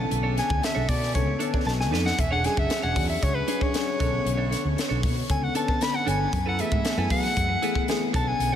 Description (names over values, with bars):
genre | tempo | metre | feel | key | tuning
polished 1980s jazz-funk pop | 116 BPM | 4/4 | straight | B dorian | A4 = 440 Hz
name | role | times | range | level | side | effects
clear soprano saxophone | melody | 0.0-8.6 s | B4 to B5 | -28 LUFS | equal | analog delay
FM electric piano | accompaniment | 0.0-8.6 s | C#3 to A4 | -29 LUFS | left 3 dB | wide subtle chorus
fretless electric bass | bass | 0.0-8.6 s | E1 to F#3 | -28 LUFS | equal | none
clean electric guitar | riff | 0.1-8.6 s | D4 to C#5 | -34 LUFS | right 5 dB | wide subtle chorus
crisp fusion drum kit | drums | 0.1-8.5 s | hi-hat, kick drum, snare drum | -28 LUFS | equal | none
room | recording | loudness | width
moderate huge ambient reverb, RT60 7.4 s | dreamy mix soaked in reverb | -22 LUFS | side -9 dB against mid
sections
0.0-8.6 A section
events
soprano saxophone solo 0.0-8.6; drum fill 1.7-2.2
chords
0.0 Bm9; 1.7 B7; 2.2 E13; 4.0 Bm9; 6.3 F#m11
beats
| 0.12 0.64 1.15 1.67 | 2.19 2.71 3.23 3.74 | 4.26 4.78 5.29 5.81 | 6.33 6.85 7.36 7.88 | 8.40